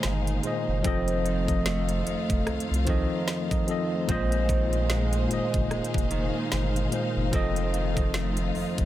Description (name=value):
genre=contemporary R&B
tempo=74 BPM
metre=4/4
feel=swing 58% on 16ths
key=unclear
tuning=A4 = 440 Hz
part: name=tine electric piano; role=accompaniment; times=0.0-8.9 s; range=Bb2 to F5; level=-28 LUFS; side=left 1 dB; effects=medium stereo tremolo, tape echo
part: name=warm studio string section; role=sustained chords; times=0.0-8.9 s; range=A3 to F5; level=-34 LUFS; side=left 1 dB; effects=sidechain pumping
part: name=direct-recorded clean electric guitar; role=arpeggios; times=0.0-8.9 s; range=F2 to C4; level=-34 LUFS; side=right 4 dB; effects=analog chorus, tape echo
part: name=warm sub bass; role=bass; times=0.0-8.9 s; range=F1 to C2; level=-28 LUFS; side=equal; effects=none
part: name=trap drum kit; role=drums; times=0.0-8.9 s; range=hi-hat, kick drum, rim click, snare drum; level=-29 LUFS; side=equal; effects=none
room=light reverb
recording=echo-heavy mix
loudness=-24 LUFS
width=side -13 dB against mid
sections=0.0-8.9 A section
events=none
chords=0.0 Bb9sus4; 0.8 F7; 4.1 Bb9sus4; 7.3 F7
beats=0.04 | 0.84 1.66 2.47 3.28 | 4.09 4.90 5.71 6.52 | 7.33 8.14